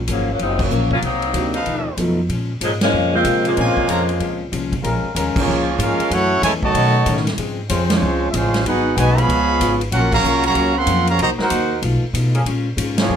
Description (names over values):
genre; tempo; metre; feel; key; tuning
jazz, big band swing; 189 BPM; 4/4; swing 64% on 8ths; Bb minor; A4 = 440 Hz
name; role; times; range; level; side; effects
upright bass; bass; 0.0-13.2 s; Gb1 to C3; -21 LUFS; equal; none
warm saxophone section; melody; 0.1-4.5 s; Bb2 to F4; -20 LUFS; left 2 dB; none
picked plugged-in steel-string acoustic guitar; accompaniment; 0.1-13.2 s; Gb2 to Gb4; -26 LUFS; left 5 dB; none
swinging big-band drum kit; drums; 0.1-13.0 s; crash cymbal, hi-hat, kick drum, ride cymbal, snare drum; -25 LUFS; equal; none
dark concert grand piano; accompaniment; 1.4-3.8 s; Db3 to E#4; -23 LUFS; right 1 dB; none
warm trumpet section; stabs; 1.5-4.0 s; Eb4 to Bb5; -23 LUFS; right 1 dB; none
bright trombone section; second line; 3.5-13.2 s; F2 to Gb4; -23 LUFS; right 2 dB; none
dark trombone section; sustained chords; 4.8-13.2 s; E#3 to C5; -26 LUFS; left 2 dB; none
clear trumpet section; melody; 5.4-13.2 s; Ab3 to C6; -18 LUFS; right 2 dB; none
room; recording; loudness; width
moderate club reverb, RT60 0.5 s; none; -16 LUFS; side -8 dB against mid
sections
0.0-4.8 A section; 4.8-13.2 B section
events
band accent 0.6, 2.8, 5.3, 7.9, 10.1, 12.9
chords
0.0 Gbmaj7; 1.0 Cm7b5; 1.7 B7#11; 2.3 Bbm7; 6.1 Gbm7; 6.7 B9; 7.4 Dbmaj7; 8.6 Abm7; 9.3 Db7; 9.9 Gbmaj7; 11.2 Cm7b5; 11.8 B7#11; 12.5 Bbm7